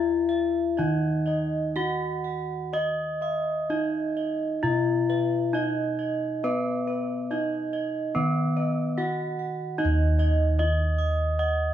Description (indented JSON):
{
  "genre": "Javanese gamelan",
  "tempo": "62-75 BPM",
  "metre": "4/4",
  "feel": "straight",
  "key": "unclear",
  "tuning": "A4 = 440 Hz",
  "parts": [
    { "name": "gamelan-type bronze metallophone", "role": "melody", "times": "0.0-11.7 s", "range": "Cb4 to Eb5", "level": "-27 LUFS", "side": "left 1 dB", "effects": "none" },
    { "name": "gamelan-type bossed gongs", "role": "arpeggios", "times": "0.0-11.7 s", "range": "Cb5 to Gb5", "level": "-36 LUFS", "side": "left 4 dB", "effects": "none" },
    { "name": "gamelan-type bronze metallophone", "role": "arpeggios", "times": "0.0-11.7 s", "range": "Cb5 to Eb6", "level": "-33 LUFS", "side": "right 8 dB", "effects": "none" },
    { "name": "gamelan-type bossed gongs", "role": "bass", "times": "0.0-11.7 s", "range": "Eb2 to Eb5", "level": "-28 LUFS", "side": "equal", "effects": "none" }
  ],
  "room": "moderate large studio reverb, RT60 1.2 s",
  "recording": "band playing live in one room",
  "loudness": "-24 LUFS",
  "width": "side -10 dB against mid",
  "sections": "0.0-9.8 A section; 9.8-11.7 B section",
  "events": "none",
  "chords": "none",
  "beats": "0.78 1.76 | 2.73 3.69 4.63 5.54 | 6.43 7.30 8.15 8.98 | 9.79 10.59 11.39"
}